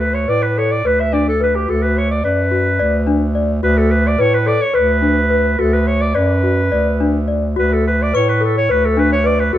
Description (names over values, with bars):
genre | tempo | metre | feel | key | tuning
contemporary instrumental, chamber music in an uneven meter | 214 BPM (eighths) | 7/8 | straight | D major | A4 = 441 Hz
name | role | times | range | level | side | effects
warm clarinet | melody | 0.0-9.6 s | G4 to E5 | -18 LUFS | right 1 dB | none
warm bass clarinet | bass | 0.0-9.6 s | D2 to A2 | -17 LUFS | equal | none
celesta | arpeggios | 0.3-9.6 s | D4 to D5 | -18 LUFS | left 2 dB | none
glockenspiel with brass mallets | texture | 8.1-8.7 s | C#6 | -27 LUFS | left 8 dB | none
room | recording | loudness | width
light reverb | close, detailed microphones | -13 LUFS | side -12 dB against mid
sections
0.0-9.6 A section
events
none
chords
0.0 D5; 1.7 Bm/D; 3.6 D6; 5.6 Bm/D; 7.6 D6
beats
0.00 0.28 0.56 0.84 1.12 1.40 | 1.68 1.96 2.24 2.52 2.80 3.08 3.36 | 3.64 3.91 4.19 4.47 4.75 5.03 5.31 | 5.59 5.87 6.16 6.44 6.72 7.01 7.29 | 7.58 7.86 8.14 8.42 8.70 8.98 9.26 | 9.54